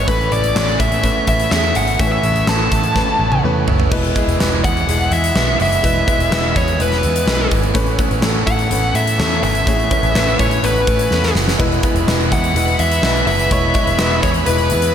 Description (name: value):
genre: piano-driven pop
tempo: 125 BPM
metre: 4/4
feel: straight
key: A major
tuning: A4 = 440 Hz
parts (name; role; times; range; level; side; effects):
- dark smooth lead guitar; melody; 0.0-14.9 s; B4 to A5; -19 LUFS; left 2 dB; overdrive, slapback echo
- clear grand piano; accompaniment; 0.0-14.9 s; A2 to C#5; -22 LUFS; left 2 dB; slapback echo
- overdriven electric guitar; riff; 0.0-14.9 s; E2 to E4; -25 LUFS; right 5 dB; slapback echo
- vintage muted picked electric bass; bass; 0.0-14.9 s; E1 to A2; -20 LUFS; equal; none
- huge arena drum kit; drums; 0.1-14.9 s; crash cymbal, handclaps, hi-hat, kick drum, snare drum, toms; -19 LUFS; right 1 dB; none
- warm studio violin section; second line; 11.6-14.9 s; B4 to B5; -25 LUFS; equal; slapback echo, digital delay
room: moderate lush hall reverb, RT60 2.5 s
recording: big arena sound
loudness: -13 LUFS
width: side -9 dB against mid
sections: 0.0-3.9 A section; 3.9-14.9 B section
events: drum fill 3.0-3.9, 11.1-11.6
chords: 0.1 Aadd9; 3.9 E; 7.8 Aadd9; 11.6 E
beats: | 0.08 0.56 1.04 1.52 | 2.00 2.48 2.96 3.44 | 3.92 4.39 4.88 5.35 | 5.83 6.31 6.79 7.27 | 7.75 8.23 8.71 9.19 | 9.67 10.15 10.63 11.11 | 11.59 12.07 12.55 13.03 | 13.51 13.99 14.47